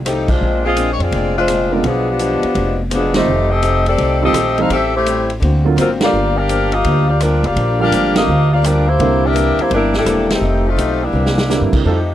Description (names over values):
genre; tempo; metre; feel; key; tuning
jazz, big band swing; 168 BPM; 4/4; swing 65% on 8ths; unclear; A4 = 440 Hz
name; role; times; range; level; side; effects
upright bass; bass; 0.0-12.1 s; E1 to C3; -18 LUFS; equal; none
warm saxophone section; melody; 0.1-11.7 s; Eb3 to F5; -16 LUFS; left 2 dB; none
picked swing-style acoustic guitar; accompaniment; 0.1-12.1 s; G2 to G4; -24 LUFS; left 4 dB; none
vintage drum kit; drums; 0.1-12.0 s; crash cymbal, hi-hat, kick drum, ride cymbal, rim click, snare drum; -23 LUFS; equal; none
warm concert grand piano; accompaniment; 1.7-11.9 s; D3 to F4; -20 LUFS; right 7 dB; none
warm trombone section; sustained chords; 11.9-12.0 s; G3 to A4; -20 LUFS; right 3 dB; none
room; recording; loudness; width
little or no reverb; dry, close 1970s-style studio recording; -13 LUFS; side -12 dB against mid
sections
0.0-11.9 A section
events
band accent 0.2, 3.1, 6.0, 8.1, 10.2; drum fill 11.1-11.5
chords
0.4 Bb9; 1.8 Bdim7; 3.3 F9; 4.7 Am7; 5.4 D7alt; 6.1 Gm7; 9.0 C9; 10.4 F9; 11.1 C9